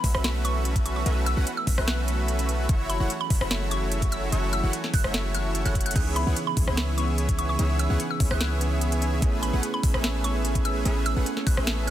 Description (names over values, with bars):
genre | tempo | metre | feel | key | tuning
future bass | 147 BPM | 4/4 | half-time | C# minor | A4 = 442 Hz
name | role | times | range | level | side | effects
mallet-like synth pluck | melody | 0.0-11.9 s | B5 to F#6 | -33 LUFS | equal | chorus, phaser, sidechain pumping, tape echo
airy breathy pad | sustained chords | 0.0-11.9 s | C#3 to A4 | -36 LUFS | right 1 dB | chorus, sidechain pumping
supersaw chords | riff | 0.0-11.9 s | A3 to F#5 | -31 LUFS | right 1 dB | sidechain pumping, tape echo
warm 808-style bass | bass | 0.0-11.9 s | F#1 to C#2 | -26 LUFS | equal | sidechain pumping
electronic kick drum | drums | 0.0-11.6 s | none | -25 LUFS | equal | overdrive
trap drum kit | drums | 0.0-11.9 s | crash cymbal, hi-hat, rim click, snare drum | -30 LUFS | equal | overdrive
bell-like tine electric piano | accompaniment | 5.9-11.9 s | E3 to G#4 | -32 LUFS | right 3 dB | sidechain pumping, tape echo
room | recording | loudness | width
little or no reverb | dense, heavily limited modern master | -22 LUFS | side -12 dB against mid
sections
0.0-11.9 A section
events
drum fill 5.8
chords
0.0 B9sus4; 2.7 F#m7; 6.0 C#m7; 9.2 Amaj9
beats
0.24 0.65 | 1.06 1.47 1.88 2.28 | 2.69 3.10 3.51 3.92 | 4.33 4.73 5.14 5.55 | 5.96 6.37 6.77 7.18 | 7.59 8.00 8.41 8.81 | 9.22 9.63 10.04 10.45 | 10.86 11.26 11.67